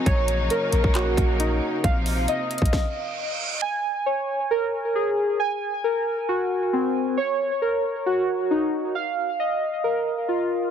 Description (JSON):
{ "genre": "hip hop, trap", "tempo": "135 BPM", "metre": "4/4", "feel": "half-time", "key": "Bb minor", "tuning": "A4 = 438 Hz", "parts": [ { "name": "bright symphonic string section", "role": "sustained chords", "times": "0.0-2.7 s", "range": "C3 to Eb4", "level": "-30 LUFS", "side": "left 1 dB", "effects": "none" }, { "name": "warbly lo-fi synth keys", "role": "arpeggios", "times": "0.0-10.7 s", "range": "C4 to Ab5", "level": "-23 LUFS", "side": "equal", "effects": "chorus, ping-pong delay" }, { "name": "warm 808-style bass", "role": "bass", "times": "0.1-2.7 s", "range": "Bb1", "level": "-24 LUFS", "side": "equal", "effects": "none" }, { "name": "trap drum kit", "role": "drums", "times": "0.1-2.8 s", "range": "handclaps, hi-hat, kick drum, snare drum", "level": "-23 LUFS", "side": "equal", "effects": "none" }, { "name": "reverse cymbal", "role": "sound effects", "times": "2.9-3.6 s", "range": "none", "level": "-30 LUFS", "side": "right 6 dB", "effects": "none" } ], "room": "light reverb", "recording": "heavily compressed radio sound, multiband compression", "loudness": "-21 LUFS", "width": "side -8 dB against mid", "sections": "0.0-3.6 A section; 3.6-10.7 B section", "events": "stop 2.7-3.6; reverse cymbal 2.9-3.6", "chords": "0.1 Ebm7/Bb; 1.8 F7sus4/Bb; 3.6 Bbm7; 5.4 Ab7/Bb; 7.2 Ebm7/Bb; 9.0 F7sus4" }